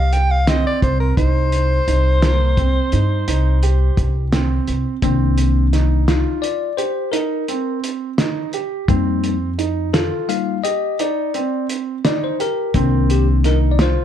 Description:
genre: progressive instrumental, band music in an uneven meter.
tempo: 171 BPM (eighths).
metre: 11/8.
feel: straight.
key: C minor.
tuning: A4 = 440 Hz.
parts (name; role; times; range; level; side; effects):
breathy soprano saxophone; melody; 0.0-4.3 s; Bb4 to G5; -22 LUFS; left 1 dB; slapback echo, plate reverb.
dark grand piano; arpeggios; 0.0-14.0 s; Bb3 to G4; -23 LUFS; right 11 dB; plate reverb.
upright bass; bass; 0.0-13.9 s; C2 to G2; -17 LUFS; equal; none.
cloth-damped thuddy drum kit; drums; 0.1-14.0 s; hi-hat, kick drum, snare drum; -21 LUFS; equal; none.
bell-like tine electric piano; accompaniment; 5.0-14.0 s; Eb3 to F5; -21 LUFS; left 13 dB; plate reverb.
room: light reverb.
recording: dark, warm production.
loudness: -16 LUFS.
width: side -10 dB against mid.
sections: 0.0-5.0 A section; 5.0-14.0 B section.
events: tine electric piano solo 5.0-14.0.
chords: 0.0 Cm; 5.0 Cm7; 8.9 F7sus4; 12.7 Cm7.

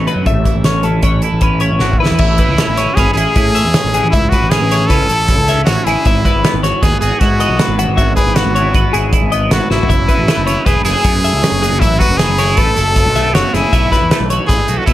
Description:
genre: math rock and midwest emo.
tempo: 156 BPM.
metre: 5/4.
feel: straight.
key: E major.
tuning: A4 = 440 Hz.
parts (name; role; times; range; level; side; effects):
twelve-string electric guitar; accompaniment; 0.0-14.9 s; F#2 to F#4; -20 LUFS; right 8 dB; phaser.
twelve-string electric guitar; arpeggios; 0.0-14.9 s; F#4 to E5; -19 LUFS; left 7 dB; none.
fuzz picked electric bass; bass; 0.0-14.9 s; E1 to B2; -17 LUFS; equal; overdrive.
loose indie drum kit; drums; 0.1-14.9 s; crash cymbal, hi-hat, kick drum, snare drum, toms; -15 LUFS; equal; none.
brilliant trumpet; melody; 1.8-14.9 s; E4 to A4; -17 LUFS; equal; none.
room: little or no reverb.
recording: none.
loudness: -10 LUFS.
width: side -14 dB against mid.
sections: 0.0-2.2 A section; 2.2-14.9 B section.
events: drum fill 1.8-2.2, 9.7.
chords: 0.3 Amaj9; 6.1 Emaj9/G#; 9.9 F#m11; 13.7 B7sus4.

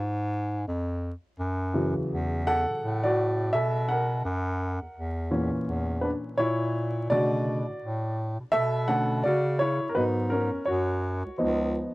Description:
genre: hip hop, jazz-hop.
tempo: 84 BPM.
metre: 4/4.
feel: swing 60% on 16ths.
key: unclear.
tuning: A4 = 441 Hz.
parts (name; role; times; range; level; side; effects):
breathy bass clarinet; bass; 0.0-11.8 s; C#2 to C#3; -29 LUFS; equal; none.
warm upright piano; accompaniment; 1.7-11.9 s; A#2 to F#5; -26 LUFS; equal; none.
room: small room reverb.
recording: dry, gritty hardware recording, vinyl crackle, faint mains hum.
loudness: -25 LUFS.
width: side -20 dB against mid.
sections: 0.0-11.9 A section.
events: upright piano solo 0.0-11.9.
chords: 0.0 C# (rootless); 1.4 F#m7; 4.2 F#7; 7.1 Bm9; 10.0 G#m7; 11.4 C#7.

